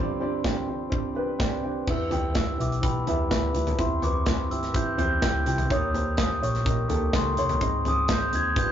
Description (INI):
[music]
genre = piano-driven pop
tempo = 126 BPM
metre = 4/4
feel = straight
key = unclear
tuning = A4 = 440 Hz
[part]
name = glockenspiel with rubber mallets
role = melody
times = 0.0-8.7 s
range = B5 to Ab6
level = -29 LUFS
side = left 1 dB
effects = ping-pong delay
[part]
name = dark upright piano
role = accompaniment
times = 0.0-8.7 s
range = G1 to G5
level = -28 LUFS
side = right 1 dB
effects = none
[part]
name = modern studio drum kit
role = drums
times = 0.4-8.7 s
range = crash cymbal, hi-hat, kick drum, snare drum, toms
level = -27 LUFS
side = equal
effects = none
[part]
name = vintage muted fingered electric bass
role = bass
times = 1.9-8.7 s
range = F1 to E2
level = -31 LUFS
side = equal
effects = none
[sound]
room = moderate small room reverb, RT60 0.5 s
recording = rough rehearsal-room recording, tube saturation, nothing above 7.5 kHz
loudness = -23 LUFS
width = side -10 dB against mid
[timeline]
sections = 0.0-1.9 A section; 1.9-8.7 B section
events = none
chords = 0.0 Gsus4; 1.9 Em; 3.8 C; 5.7 Eb7; 7.6 Ab